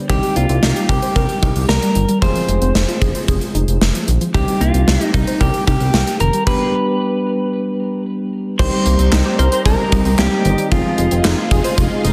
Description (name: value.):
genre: synth-pop.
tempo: 113 BPM.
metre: 4/4.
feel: straight.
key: C minor.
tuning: A4 = 439 Hz.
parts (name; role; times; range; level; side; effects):
barky tine electric piano; accompaniment; 0.0-12.1 s; G3 to Ab4; -25 LUFS; equal; none.
warbly dusty pluck; arpeggios; 0.0-12.1 s; Eb3 to C5; -26 LUFS; equal; chorus, digital delay.
electric guitar at the edge of break-up; melody; 0.1-12.1 s; Eb4 to C5; -24 LUFS; equal; digital delay.
smooth synth bass; bass; 0.1-12.1 s; F1 to C2; -19 LUFS; equal; none.
gated 80s drum kit; drums; 0.1-12.1 s; crash cymbal, handclaps, hi-hat, kick drum, snare drum; -21 LUFS; equal; none.
string machine, cellos; sustained chords; 8.6-12.1 s; G4 to C6; -27 LUFS; equal; ensemble chorus.
room: moderate scoring stage reverb, RT60 1.9 s, small room ambience.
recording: dense, heavily limited modern master.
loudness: -16 LUFS.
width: mono.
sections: 0.0-8.6 A section; 8.6-12.1 B section.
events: stop 6.5-8.6.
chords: 0.1 Cm7; 2.2 Fm7; 4.3 Cm7; 6.5 G; 8.6 Cm7; 10.7 Fm7.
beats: | 0.10 0.63 1.16 1.69 | 2.22 2.75 3.28 3.81 | 4.34 4.88 5.41 5.94 | 6.47 7.00 7.53 8.06 | 8.59 9.12 9.65 10.19 | 10.72 11.25 11.78.